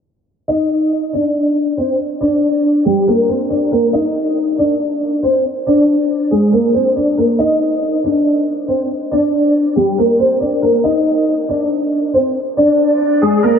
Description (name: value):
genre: hip hop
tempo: 139 BPM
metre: 4/4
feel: half-time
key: C minor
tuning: A4 = 440 Hz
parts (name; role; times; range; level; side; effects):
- dark grand piano; melody; 0.5-13.6 s; G3 to Eb5; -12 LUFS; equal; ensemble chorus, low-pass filter, ping-pong delay
room: wet huge ambient reverb, RT60 5.2 s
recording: dreamy mix soaked in reverb, low-pass filter, nothing above 7.8 kHz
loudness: -13 LUFS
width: side -7 dB against mid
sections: 0.5-13.6 A section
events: filter sweep 0.5-13.6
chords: 0.5 Cm; 2.2 Gm; 3.9 Cm; 5.7 Bbadd9; 7.4 Cm; 9.1 Gm; 10.8 Cm; 12.6 Bb